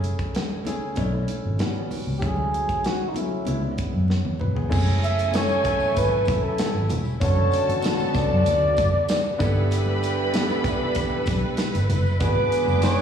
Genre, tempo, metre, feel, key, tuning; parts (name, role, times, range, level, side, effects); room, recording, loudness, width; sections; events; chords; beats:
lush 1970s-style soul; 96 BPM; 4/4; straight; F# minor; A4 = 440 Hz
warm grand piano; accompaniment; 0.0-13.0 s; D3 to C#5; -30 LUFS; left 3 dB; slapback echo
vintage muted fingered electric bass; bass; 0.0-12.9 s; E1 to F#2; -24 LUFS; equal
modern studio drum kit; drums; 0.0-13.0 s; crash cymbal, hi-hat, kick drum, snare drum, toms; -28 LUFS; equal
congas; percussion; 0.0-13.0 s; -36 LUFS; right 4 dB
breathy flugelhorn; melody; 2.2-13.0 s; D#4 to E5; -24 LUFS; equal; slapback echo
warm studio violin section; second line; 4.7-13.0 s; D4 to D6; -32 LUFS; left 1 dB; slapback echo
warm studio string section; sustained chords; 4.7-13.0 s; F#3 to B4; -33 LUFS; left 2 dB
clear trombone section; stabs; 4.7-13.0 s; C#3 to G#4; -29 LUFS; right 3 dB; slapback echo
tambourine; percussion; 4.7-13.0 s; -45 LUFS; left 3 dB
light reverb, studio reverb; live gig heard through the venue's PA, recital hall reverb, small room ambience; -20 LUFS; side -8 dB against mid
0.0-4.7 A section; 4.7-13.0 B section
drum fill 4.1-4.7
0.0 F#m9; 1.0 Bm11; 1.6 A13; 2.2 Dmaj7; 3.5 C#m7; 4.7 F#m9; 7.2 Bm9/F#; 9.4 G69; 12.2 G#m7b5
0.34 0.97 1.60 | 2.22 2.85 3.47 4.10 | 4.72 5.34 5.97 6.59 | 7.22 7.84 8.47 9.09 | 9.71 10.34 10.96 11.59 | 12.21 12.83